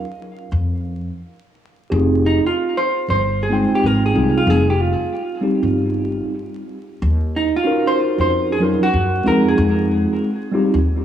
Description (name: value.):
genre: hip hop, jazz-hop.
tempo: 94 BPM.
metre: 4/4.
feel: swing 64% on 16ths.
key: F minor.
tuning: A4 = 442 Hz.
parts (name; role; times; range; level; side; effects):
vintage hollow-body jazz guitar; melody; 0.0-11.0 s; Eb4 to F5; -20 LUFS; right 1 dB; tape echo.
upright bass; bass; 0.5-11.0 s; F1 to Gb2; -20 LUFS; equal; none.
mellow tine electric piano; accompaniment; 1.9-10.8 s; Gb3 to G5; -19 LUFS; equal; medium stereo tremolo, tape echo.
room: moderate spring reverb, RT60 1.4 s, small room ambience.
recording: echo-heavy mix, vinyl crackle.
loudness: -16 LUFS.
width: side -10 dB against mid.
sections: 0.0-1.9 A section; 1.9-11.0 B section.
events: none.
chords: 0.0 N.C.; 1.9 Fm9; 7.0 Ebm9; 9.3 Fm9.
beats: 0.00 0.64 1.27 | 1.91 2.55 3.19 3.83 | 4.47 5.10 5.74 6.38 | 7.02 7.66 8.29 8.93 | 9.57 10.21 10.85.